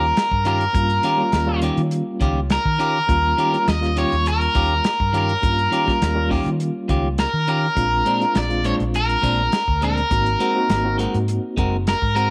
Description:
straight-eighth soul blues; 102 BPM; 4/4; straight; Eb mixolydian; A4 = 440 Hz
overdriven electric guitar; melody; 0.0-12.3 s; Bb4 to Eb5; -22 LUFS; equal; slapback echo
reed electric piano; accompaniment; 0.0-12.0 s; G3 to Gb4; -28 LUFS; equal; fast tremolo
clean electric guitar; stabs; 0.0-12.3 s; Bb2 to Bb4; -29 LUFS; equal
vintage muted fingered electric bass; bass; 0.0-12.3 s; Gb1 to Eb3; -25 LUFS; equal
warm soul drum kit; drums; 0.2-12.3 s; hi-hat, kick drum, snare drum; -27 LUFS; equal
light reverb, studio reverb; -20 LUFS; mono
0.0-12.3 A section
0.0 Eb9; 7.8 Bb9; 10.1 Ab9
0.16 | 0.74 1.33 1.92 2.50 | 3.08 3.67 4.26 4.84 | 5.43 6.01 6.60 7.18 | 7.77 8.35 8.94 9.53 | 10.11 10.70 11.28 11.87

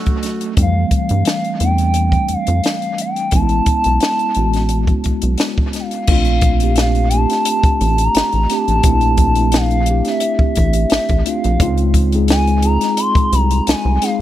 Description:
R&B, neo-soul; 87 BPM; 4/4; swing 53% on 16ths; A4 = 440 Hz
semi-hollow electric guitar; second line; 0.0-0.5 s; A3 to F#4; -26 LUFS; right 7 dB
mellow tine electric piano; accompaniment; 0.0-14.2 s; E3 to G#4; -20 LUFS; equal; medium stereo tremolo
compact cocktail drum kit; drums; 0.1-14.2 s; crash cymbal, hi-hat, kick drum, snare drum; -18 LUFS; equal
gliding portamento lead; melody; 0.6-14.2 s; E5 to B#5; -19 LUFS; equal; chorus, dub echo
rubbery square bass; bass; 0.6-14.0 s; A1 to G2; -16 LUFS; equal
small room reverb; echo-heavy mix; -13 LUFS; side -13 dB against mid
0.0-6.1 A section; 6.1-14.2 B section
0.0 Dmaj7 (rootless); 0.6 Fmaj9; 3.3 Amaj9; 6.1 Bbmaj9; 11.6 C#maj9
| 0.57 1.25 1.95 2.63 | 3.32 4.01 4.70 5.39 | 6.08 6.77 7.46 8.15 | 8.84 9.53 10.22 10.91 | 11.60 12.29 12.98 13.67

